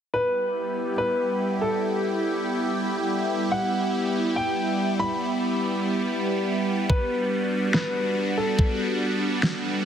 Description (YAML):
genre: heavy wobble dubstep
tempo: 142 BPM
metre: 4/4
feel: swing 53% on 16ths, half-time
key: E minor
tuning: A4 = 439 Hz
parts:
  - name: dark grand piano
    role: melody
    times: 0.1-9.8 s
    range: A4 to B5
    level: -28 LUFS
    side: equal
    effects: dub echo
  - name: supersaw pad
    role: sustained chords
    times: 0.3-9.8 s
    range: G3 to G4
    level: -25 LUFS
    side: equal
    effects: phaser, sidechain pumping
  - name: electronic kick drum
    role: drums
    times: 6.9-8.7 s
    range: none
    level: -21 LUFS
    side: equal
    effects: overdrive
  - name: electronic snare drum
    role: drums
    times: 7.7-9.5 s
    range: none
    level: -25 LUFS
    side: equal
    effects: overdrive, low-pass filter on snare
room: moderate lush hall reverb, RT60 2.1 s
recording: heavily compressed radio sound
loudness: -22 LUFS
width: side -8 dB against mid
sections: 0.1-9.8 A section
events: none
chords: 0.1 Emadd9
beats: | 0.14 0.56 0.98 1.40 | 1.83 2.25 2.67 3.09 | 3.52 3.94 4.36 4.78 | 5.21 5.63 6.05 6.47 | 6.90 7.32 7.74 8.16 | 8.59 9.01 9.43